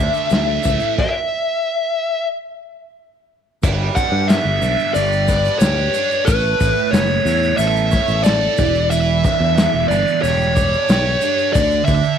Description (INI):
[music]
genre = psychedelic rock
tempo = 91 BPM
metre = 4/4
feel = straight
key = E dorian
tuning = A4 = 439 Hz
[part]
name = fuzz lead guitar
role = melody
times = 0.0-12.2 s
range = B4 to F#5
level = -18 LUFS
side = left 2 dB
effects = distortion, slapback echo
[part]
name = thick fuzz guitar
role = riff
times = 0.0-12.2 s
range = A2 to D5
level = -21 LUFS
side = right 14 dB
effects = distortion, phaser
[part]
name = fingered electric bass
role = bass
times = 0.0-12.0 s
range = E1 to G2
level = -20 LUFS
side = left 1 dB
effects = none
[part]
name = tube shaker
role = percussion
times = 0.1-12.1 s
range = none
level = -36 LUFS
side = left 20 dB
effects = none
[part]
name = vintage drum kit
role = drums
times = 0.3-12.0 s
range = crash cymbal, hi-hat, kick drum, snare drum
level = -20 LUFS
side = left 1 dB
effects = none
[sound]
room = light reverb, small room ambience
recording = 1960s-style stereo with parts hard left and right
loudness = -14 LUFS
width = side -8 dB against mid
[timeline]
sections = 0.0-3.6 A section; 3.6-12.2 B section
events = stop 1.0-3.6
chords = 0.0 Dsus2; 0.7 A5; 2.3 N.C.; 3.6 G; 6.3 Aadd9; 8.6 Em7; 11.5 N.C.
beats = 0.32 | 0.98 1.65 2.31 2.97 | 3.63 4.29 4.95 5.61 | 6.27 6.93 7.59 8.25 | 8.91 9.57 10.23 10.89 | 11.55